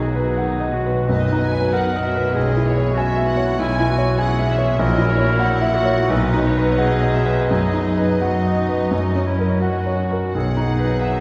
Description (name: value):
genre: classical, romantic movement for piano and orchestra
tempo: 80-102 BPM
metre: 4/4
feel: rubato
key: B major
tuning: A4 = 440 Hz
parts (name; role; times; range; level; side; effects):
- clear concert grand piano; melody; 0.0-11.2 s; A#1 to G#5; -21 LUFS; equal; none
- bright clarinet; second line; 0.0-11.2 s; E4 to B4; -28 LUFS; equal; none
- rich studio viola section; accompaniment; 0.0-11.2 s; D#3 to F#4; -31 LUFS; equal; none
- warm studio cello section; bass; 0.0-11.2 s; F#2 to B2; -28 LUFS; equal; none
- warm studio violin section; second line; 1.1-11.2 s; C#5 to G#5; -32 LUFS; equal; none
room: wet church reverb, RT60 3.8 s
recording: recorded in a church or concert hall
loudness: -19 LUFS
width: mono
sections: 0.0-11.2 A section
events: none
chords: 0.0 B; 2.4 C#m7/B; 4.8 F#7/A#; 6.1 B; 7.5 B/F#; 8.9 F#; 10.3 B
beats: 0.39 1.10 1.74 | 2.36 2.96 3.59 4.19 | 4.79 5.40 6.11 6.79 | 7.49 8.22 8.92 9.62 | 10.34 11.03